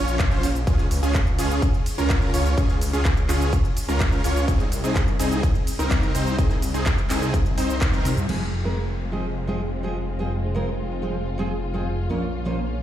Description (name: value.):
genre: EDM, festival progressive house.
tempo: 126 BPM.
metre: 4/4.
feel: straight.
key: F minor.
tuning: A4 = 444 Hz.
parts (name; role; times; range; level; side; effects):
supersaw chords; riff; 0.0-8.1 s; C4 to Db5; -26 LUFS; equal; sidechain pumping, low-pass filter, ping-pong delay.
wide detuned saw bass; bass; 0.0-12.8 s; F1 to Db2; -25 LUFS; equal; chorus, sidechain pumping.
house drum kit; drums; 0.1-8.4 s; crash cymbal, handclaps, hi-hat, ride cymbal, shaker, toms; -31 LUFS; equal; none.
electronic kick drum; drums; 0.2-7.9 s; none; -21 LUFS; equal; none.
fingerpicked steel-string acoustic guitar; accompaniment; 8.3-12.6 s; Bb2 to C5; -28 LUFS; right 2 dB; sidechain pumping, ping-pong delay.
dark studio string section; sustained chords; 8.3-12.8 s; Ab3 to F4; -32 LUFS; left 2 dB; sidechain pumping, low-pass filter.
room: little or no reverb.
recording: played on a big sound system in a bare room, large studio reverb.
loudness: -20 LUFS.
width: side -12 dB against mid.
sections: 0.0-8.3 A section; 8.3-12.8 B section.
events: drop 0.0-8.3; band accent 7.8; drum fill 7.9-8.3; filter sweep on string section 8.3-12.8.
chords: 0.0 Bbm; 0.7 Db; 4.5 Ab/C; 8.3 Fm; 12.1 Bbm.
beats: 0.20 | 0.67 1.15 1.62 2.10 | 2.58 3.05 3.53 4.00 | 4.48 4.96 5.43 5.91 | 6.38 6.86 7.34 7.81 | 8.29 8.77 9.24 9.72 | 10.20 10.67 11.15 11.62 | 12.10 12.58.